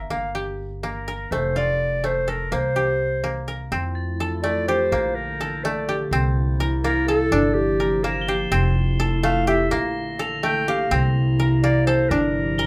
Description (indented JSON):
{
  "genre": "contemporary instrumental, chamber music in an uneven meter",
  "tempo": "250 BPM (eighths)",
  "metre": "5/8",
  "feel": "straight",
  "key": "C mixolydian",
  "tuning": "A4 = 440 Hz",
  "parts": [
    { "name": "koto", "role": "arpeggios", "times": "0.0-12.7 s", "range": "A3 to Bb4", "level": "-28 LUFS", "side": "equal", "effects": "none" },
    { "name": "upright bass", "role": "bass", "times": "0.0-12.7 s", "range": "F1 to F2", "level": "-27 LUFS", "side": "equal", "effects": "none" },
    { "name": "warm clarinet", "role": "melody", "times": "0.1-12.7 s", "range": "G4 to G5", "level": "-26 LUFS", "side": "equal", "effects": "none" },
    { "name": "warbly tape-like pad", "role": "sustained chords", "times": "3.9-12.7 s", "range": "C3 to A5", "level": "-29 LUFS", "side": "equal", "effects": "chorus, built-in reverb" },
    { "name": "crotales", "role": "texture", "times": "4.0-12.7 s", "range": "G6 to G7", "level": "-36 LUFS", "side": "equal", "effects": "none" }
  ],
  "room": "wet studio ambience, RT60 0.5 s",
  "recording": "heard from further back in the room",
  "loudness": "-22 LUFS",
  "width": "mono",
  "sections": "0.0-3.7 A section; 3.7-12.7 B section",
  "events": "none",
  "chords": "0.0 Gm; 1.3 F; 2.5 C5; 3.7 Fmaj7; 4.9 Bbmaj7; 6.1 C7; 7.3 Gm7; 8.5 Fmaj7; 9.7 Bbmaj7; 10.9 C7; 12.1 Gm7"
}